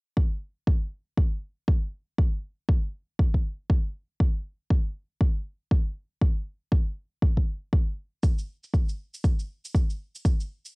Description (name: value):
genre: afro house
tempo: 119 BPM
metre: 4/4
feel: swing 59% on 16ths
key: none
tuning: none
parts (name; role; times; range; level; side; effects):
- electronic kick drum; drums; 0.2-10.4 s; none; -22 LUFS; equal; small room ambience, cassette tape
- shaker; drums; 8.2-10.7 s; none; -45 LUFS; right 2 dB; small room ambience, cassette tape
room: little or no reverb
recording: home recording on cassette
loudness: -25 LUFS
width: side -37 dB against mid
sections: 0.2-10.8 A section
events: none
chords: none